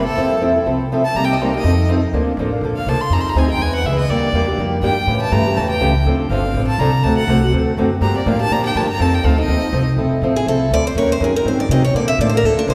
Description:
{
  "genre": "acoustic string swing (jazz manouche)",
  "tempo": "244 BPM",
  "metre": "4/4",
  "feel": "swing 55% on 8ths",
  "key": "Bb major",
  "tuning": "A4 = 440 Hz",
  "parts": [
    { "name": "clear violin", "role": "second line", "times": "0.0-9.9 s", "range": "A4 to C6", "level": "-25 LUFS", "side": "equal", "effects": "none" },
    { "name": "picked old ladder-braced acoustic guitar", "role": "accompaniment", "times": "0.0-12.7 s", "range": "C3 to Bb4", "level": "-20 LUFS", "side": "equal", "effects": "none" },
    { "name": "upright bass", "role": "bass", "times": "0.0-12.7 s", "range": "F1 to C3", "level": "-21 LUFS", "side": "equal", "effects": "none" },
    { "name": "picked steel-string acoustic guitar", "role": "melody", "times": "10.4-12.7 s", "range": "D4 to E5", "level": "-21 LUFS", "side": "equal", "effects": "none" }
  ],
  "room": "wet church reverb, RT60 2.7 s",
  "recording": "recorded in a church or concert hall",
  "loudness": "-17 LUFS",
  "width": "mono",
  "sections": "0.0-2.1 A section; 2.1-10.0 A section; 10.0-12.7 A section",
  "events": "violin solo 0.0-10.0; steel-string acoustic guitar solo 10.0-12.7",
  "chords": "0.2 Fmaj7; 1.2 Cm7; 1.6 F7; 2.1 Bbmaj9; 3.1 Fm7; 3.6 E7; 4.1 Ebmaj7; 5.1 A7; 6.1 Dm7; 7.0 D7; 8.0 Gm9; 9.0 F7; 10.0 Fmaj7; 11.0 Ebm7; 11.5 Ab7; 12.0 Bbmaj7"
}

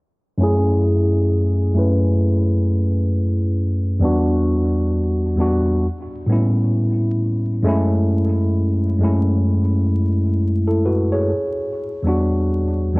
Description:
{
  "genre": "hip hop",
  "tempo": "66 BPM",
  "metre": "4/4",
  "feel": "swing 63% on 16ths",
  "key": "F# minor",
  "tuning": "A4 = 440 Hz",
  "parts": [
    { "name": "tine electric piano", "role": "solo", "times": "0.4-13.0 s", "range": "E2 to C#5", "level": "-16 LUFS", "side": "equal", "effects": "cassette tape, low-pass filter" }
  ],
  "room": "moderate spring reverb, RT60 1.3 s",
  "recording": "home recording on cassette, vinyl crackle, low-pass filter",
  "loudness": "-16 LUFS",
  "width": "side -26 dB against mid",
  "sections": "0.4-7.7 A section; 7.7-13.0 B section",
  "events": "filter sweep 0.4-7.7",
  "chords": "0.4 F#m9; 4.0 Em9; 5.8 A9; 7.7 F#m9; 11.3 Em9"
}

